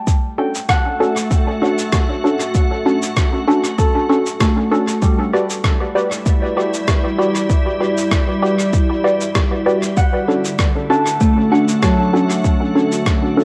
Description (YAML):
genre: ambient dub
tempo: 97 BPM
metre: 4/4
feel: swing 54% on 16ths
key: unclear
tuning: A4 = 437 Hz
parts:
  - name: Celtic harp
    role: arpeggios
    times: 0.0-13.4 s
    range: F#3 to A5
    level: -23 LUFS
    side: equal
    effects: cassette tape, analog delay
  - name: electronic cabasa and rim click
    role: drums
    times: 0.1-13.2 s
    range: none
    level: -27 LUFS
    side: equal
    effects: overdrive, dub echo
  - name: electronic kick drum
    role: drums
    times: 0.1-13.2 s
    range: none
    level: -19 LUFS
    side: equal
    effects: overdrive
  - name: soft additive organ-like pad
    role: sustained chords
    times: 0.5-13.4 s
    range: D3 to F#4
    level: -24 LUFS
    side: equal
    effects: ensemble chorus, built-in reverb, cassette tape
  - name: filtered dub chord stab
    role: stabs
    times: 0.4-13.4 s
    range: C#4 to D5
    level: -21 LUFS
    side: equal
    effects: phaser, cassette tape, dub echo
room: light reverb, digital ambience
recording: home recording on cassette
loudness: -17 LUFS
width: mono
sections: 0.1-13.4 A section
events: none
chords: 0.1 A6; 5.0 Em7; 10.0 Dmaj7